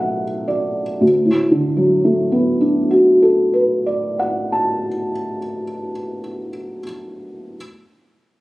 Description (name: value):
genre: neoclassical minimalist piano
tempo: 55 BPM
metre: 4/4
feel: rubato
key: D major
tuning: A4 = 439 Hz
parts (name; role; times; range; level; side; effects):
- felt-muted upright piano; solo; 0.0-7.6 s; D2 to A5; -16 LUFS; equal; none
room: light reverb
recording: recorded on a phone in the room, studio reverb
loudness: -15 LUFS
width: side -19 dB against mid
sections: 0.0-1.0 A section; 1.0-5.4 B section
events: slowing down 0.0-1.0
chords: 0.0 Bm7; 1.0 D6